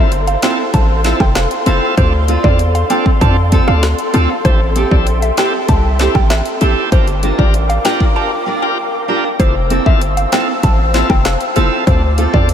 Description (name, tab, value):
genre	dancehall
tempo	97 BPM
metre	4/4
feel	straight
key	F major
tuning	A4 = 439 Hz
part	mallet-like synth pluck	melody	0.0-12.4 s	C5 to A5	-21 LUFS	equal	chorus, phaser, ping-pong delay
part	bright tonewheel organ	accompaniment	0.0-12.5 s	C4 to Bb4	-21 LUFS	equal	overdrive, slow rotary speaker, sidechain pumping
part	breathy large flute ensemble	sustained chords	0.0-12.5 s	A4 to E6	-21 LUFS	left 1 dB	sidechain pumping
part	hard-hitting 808-style bass	bass	0.0-12.5 s	F1 to F2	-14 LUFS	equal	none
part	deep house drum kit	drums	0.1-12.5 s	hi-hat, kick drum, rim click, snare drum	-16 LUFS	equal	none
part	fingerpicked steel-string acoustic guitar	arpeggios	0.4-12.4 s	C4 to Bb4	-21 LUFS	right 3 dB	ping-pong delay
part	bongos	percussion	1.2-12.3 s	none	-29 LUFS	left 8 dB	none
room	moderate huge ambient reverb, RT60 8.0 s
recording	dreamy mix soaked in reverb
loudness	-11 LUFS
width	side -9 dB against mid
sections	0.0-9.4 A section; 9.4-12.5 A section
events	break 8.2-9.4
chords	0.0 Fmaj7; 2.0 Dm7; 4.4 Am7; 6.9 Gm7; 9.4 Fmaj7; 11.9 Dm7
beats	0.12 0.74 1.36 | 1.98 2.59 3.21 3.83 | 4.45 5.07 5.69 6.30 | 6.92 7.54 8.16 8.78 | 9.40 10.02 10.63 11.25 | 11.87 12.49